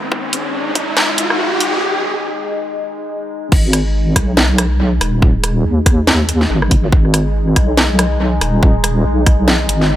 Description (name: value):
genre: deep dubstep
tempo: 141 BPM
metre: 4/4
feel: swing 58% on 16ths, half-time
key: G# minor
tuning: A4 = 438 Hz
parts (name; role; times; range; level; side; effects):
- deep dark ambient pad; sustained chords; 0.0-10.0 s; G#3 to D#4; -22 LUFS; left 2 dB; chorus, built-in reverb
- riser; sound effects; 0.0-1.8 s; none; -18 LUFS; equal; none
- electronic kick drum; drums; 0.1-0.9, 3.5-9.4 s; none; -12 LUFS; equal; high-pass filter on kick
- garage drum kit; drums; 0.3-9.9 s; crash cymbal, hi-hat, rim click, snare drum; -16 LUFS; equal; high-pass filter on hats, high-pass filter on snare, high-pass filter on cymbals, analog delay
- deep soft wobble bass; bass; 3.5-10.0 s; D#1 to D#2; -14 LUFS; equal; chorus
room: light reverb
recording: echo-heavy mix, high-pass filter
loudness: -12 LUFS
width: side -13 dB against mid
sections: 0.0-3.5 A section; 3.5-10.0 B section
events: build-up 0.0-3.5; riser 0.0-1.8; filter sweep 0.0-3.5; break 1.8-3.5; drop 3.5-10.0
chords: 0.0 G#5; 3.5 G#m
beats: | 0.12 0.54 0.97 1.39 | 1.82 2.24 2.67 3.10 | 3.52 3.95 4.37 4.80 | 5.22 5.65 6.07 6.50 | 6.92 7.35 7.78 8.20 | 8.63 9.05 9.48 9.90